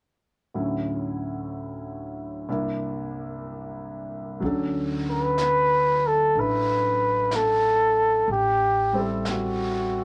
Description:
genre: jazz ballad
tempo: 62 BPM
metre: 4/4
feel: swing 68% on 8ths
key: D major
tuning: A4 = 442 Hz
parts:
  - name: warm concert grand piano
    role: accompaniment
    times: 0.5-10.0 s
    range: C2 to A4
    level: -32 LUFS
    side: equal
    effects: none
  - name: upright bass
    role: bass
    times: 4.4-10.0 s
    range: A1 to D2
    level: -35 LUFS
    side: equal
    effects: none
  - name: jazz brush drum kit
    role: drums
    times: 4.4-10.0 s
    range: brushed snare drum, hi-hat, snare drum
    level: -40 LUFS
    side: equal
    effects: none
  - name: mellow flugelhorn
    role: melody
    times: 5.1-10.0 s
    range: F#4 to B4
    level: -23 LUFS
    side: equal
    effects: none
room: moderate small room reverb, RT60 0.6 s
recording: none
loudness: -24 LUFS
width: mono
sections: 0.5-4.4 A section; 4.4-10.0 B section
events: none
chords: 0.5 Dmaj7; 2.5 C9; 4.4 Dmaj7; 8.3 Am7

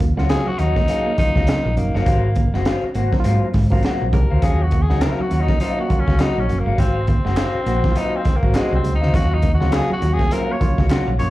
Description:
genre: funk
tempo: 102 BPM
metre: 4/4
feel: swing 60% on 16ths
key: Eb dorian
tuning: A4 = 441 Hz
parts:
  - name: electric guitar through a small old amp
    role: accompaniment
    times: 0.0-11.2 s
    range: Gb4 to Gb5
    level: -26 LUFS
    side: left 4 dB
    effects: slapback echo
  - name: clean electric guitar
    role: riff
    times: 0.0-11.2 s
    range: Gb3 to Bb3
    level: -30 LUFS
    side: right 5 dB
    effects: slapback echo
  - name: barky reed electric piano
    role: stabs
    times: 0.0-11.3 s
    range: Gb3 to Ab4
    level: -26 LUFS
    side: right 3 dB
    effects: overdrive, slapback echo
  - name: hollow-body short-scale fingered electric bass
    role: bass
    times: 0.0-11.3 s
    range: Gb1 to Ab2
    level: -19 LUFS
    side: equal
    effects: none
  - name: crunchy breakbeat drum kit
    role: drums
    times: 0.0-11.3 s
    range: hi-hat, kick drum, snare drum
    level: -21 LUFS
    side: equal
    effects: none
  - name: breathy tenor saxophone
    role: melody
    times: 0.3-11.3 s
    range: Ab3 to Db5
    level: -24 LUFS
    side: left 1 dB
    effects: slapback echo
  - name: group handclap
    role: percussion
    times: 5.0-11.1 s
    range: none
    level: -37 LUFS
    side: left 3 dB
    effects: none
room: little or no reverb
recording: live gig heard through the venue's PA, club reverb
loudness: -16 LUFS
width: side -16 dB against mid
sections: 0.0-11.3 A section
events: tenor saxophone solo 0.0-11.3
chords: 0.0 Ebm9; 2.1 Ab13; 4.4 Ebm9; 6.8 Ab13; 9.1 Ebm9

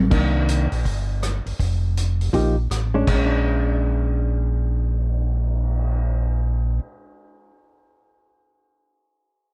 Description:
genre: soul jazz organ trio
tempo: 162 BPM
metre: 4/4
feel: swing 63% on 8ths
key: Bb mixolydian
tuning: A4 = 440 Hz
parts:
  - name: mellow tonewheel organ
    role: bass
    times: 0.0-6.8 s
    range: F1 to C2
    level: -23 LUFS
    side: equal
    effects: slow rotary speaker
  - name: hollow-body jazz guitar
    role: accompaniment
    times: 0.1-7.6 s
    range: Eb3 to G4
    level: -26 LUFS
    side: equal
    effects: none
  - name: vintage drum kit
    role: drums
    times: 0.1-6.0 s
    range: crash cymbal, cymbal swell, hi-hat, kick drum, rim click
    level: -28 LUFS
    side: equal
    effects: none
room: little or no reverb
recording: dark, warm production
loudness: -22 LUFS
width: mono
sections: 0.1-3.1 A section; 3.1-6.0 B section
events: none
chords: 0.1 Cm9; 1.6 F9sus4; 3.1 Bb7#9

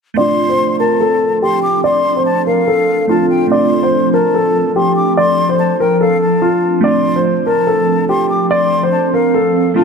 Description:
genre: hip hop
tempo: 144 BPM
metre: 4/4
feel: half-time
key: D minor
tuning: A4 = 442 Hz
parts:
  - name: glassy digital keys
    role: accompaniment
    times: 0.1-9.8 s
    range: A3 to F4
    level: -20 LUFS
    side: right 4 dB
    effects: chorus, low-pass filter
  - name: dark concert grand piano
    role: melody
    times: 0.2-9.8 s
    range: F4 to D5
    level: -14 LUFS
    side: left 1 dB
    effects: low-pass filter, tape echo
  - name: breathy concert flute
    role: second line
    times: 0.2-9.8 s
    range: F5 to D6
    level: -19 LUFS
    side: left 2 dB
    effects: tape echo
  - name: ethereal airy pad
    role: sustained chords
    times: 1.2-9.8 s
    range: F3 to A4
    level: -18 LUFS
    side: right 1 dB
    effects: ensemble chorus, built-in reverb, phaser, low-pass filter
room: moderate lush hall reverb, RT60 2.3 s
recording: none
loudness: -11 LUFS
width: side -5 dB against mid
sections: 0.2-9.8 A section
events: filter sweep 0.2-9.8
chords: 0.2 Dm7

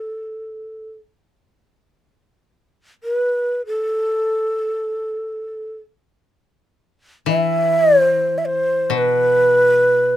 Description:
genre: japanese traditional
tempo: free time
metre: none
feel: none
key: A minor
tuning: A4 = 440 Hz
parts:
  - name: breathy mellow shakuhachi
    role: melody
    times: 0.0-10.2 s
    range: A4 to E5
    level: -16 LUFS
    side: right 1 dB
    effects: none
  - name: koto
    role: accompaniment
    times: 7.3-10.2 s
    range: B2 to E3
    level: -24 LUFS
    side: left 9 dB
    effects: none
room: light reverb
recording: none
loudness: -16 LUFS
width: side -12 dB against mid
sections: 0.0-6.0 A section; 6.0-10.2 A section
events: none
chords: none

